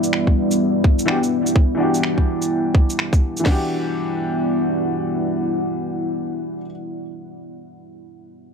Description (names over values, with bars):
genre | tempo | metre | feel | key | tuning
future garage | 126 BPM | 4/4 | swing 61% on 16ths | E minor | A4 = 440 Hz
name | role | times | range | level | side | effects
bright upright piano | accompaniment | 0.0-6.7 s | E3 to G4 | -26 LUFS | left 1 dB | sidechain pumping, low-pass filter, analog delay
deep dark ambient pad | sustained chords | 0.0-6.9 s | G3 to F#5 | -21 LUFS | equal | chorus, built-in reverb, sidechain pumping
electronic shaker and finger snaps | drums | 0.0-3.4 s | none | -24 LUFS | right 1 dB | none
garage drum kit | drums | 0.3-3.6 s | crash cymbal, kick drum, snare drum | -16 LUFS | equal | overdrive
room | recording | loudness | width
light reverb | dry, gritty hardware recording | -17 LUFS | side -6 dB against mid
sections
0.0-3.5 A section; 3.5-7.3 B section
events
none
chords
0.0 Em9